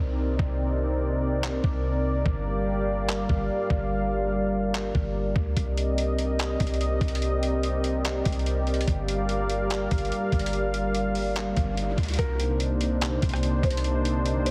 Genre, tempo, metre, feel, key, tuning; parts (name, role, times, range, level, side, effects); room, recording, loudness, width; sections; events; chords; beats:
hip hop, atmospheric cloud-rap; 145 BPM; 4/4; half-time; C minor; A4 = 439 Hz
dark analog pad; sustained chords; 0.0-14.5 s; C3 to F5; -30 LUFS; equal; chorus, sidechain pumping
warm 808-style bass; bass; 0.0-14.5 s; G1 to D2; -30 LUFS; equal
impact and riser; sound effects; 0.0-0.6, 11.5-12.2 s; -46 LUFS; equal
trip hop sampler-style drum kit; drums; 0.4-14.5 s; handclaps, hi-hat, kick drum, rim click; -32 LUFS; equal
felt-muted upright piano; melody; 12.2-14.5 s; Bb4 to C5; -36 LUFS; equal; tape echo
light reverb; heavily compressed radio sound; -26 LUFS; mono
0.0-12.2 A section; 12.2-14.5 B section
break 0.0-5.6; impact 0.0-0.6; riser 11.5-12.2
0.0 Cm7; 2.3 Gm7; 5.6 Cm7; 8.9 Gm7; 12.2 Cm7
0.19 | 0.60 1.01 1.43 1.84 | 2.26 2.67 3.08 3.50 | 3.91 4.33 4.74 5.15 | 5.57 5.98 6.39 6.81 | 7.22 7.63 8.05 8.46 | 8.88 9.29 9.70 10.12 | 10.53 10.95 11.36 11.77 | 12.19 12.60 13.02 13.43 | 13.84 14.26